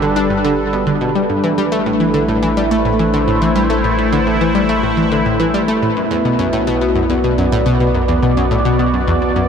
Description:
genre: ambient, sequencer-driven space music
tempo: 106 BPM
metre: 4/4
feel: straight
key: unclear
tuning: A4 = 440 Hz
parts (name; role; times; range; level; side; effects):
- sweeping resonant pad; sustained chords; 0.0-9.5 s; G3 to D5; -16 LUFS; equal; chorus
- analog pluck; riff; 0.0-9.4 s; E2 to D4; -17 LUFS; left 1 dB; chorus, tape echo
- round analog bass; bass; 0.0-9.5 s; G1 to B1; -22 LUFS; equal; none
room: wet huge ambient reverb, RT60 8.5 s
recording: none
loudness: -13 LUFS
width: side -7 dB against mid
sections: 0.0-9.5 A section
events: none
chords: 0.0 G; 1.4 Amadd9; 6.0 Bm

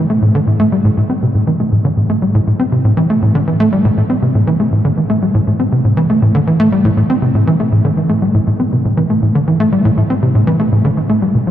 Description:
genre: ambient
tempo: 120 BPM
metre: 4/4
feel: straight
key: A minor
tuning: A4 = 441 Hz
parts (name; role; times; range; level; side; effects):
- tight sequencer bass; solo; 0.0-11.5 s; A2 to C4; -11 LUFS; equal; lush chorus, analog delay
room: wet cathedral reverb, RT60 5.2 s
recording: in a vast, echoing space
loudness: -11 LUFS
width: side -11 dB against mid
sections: 0.0-11.5 A section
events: none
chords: none

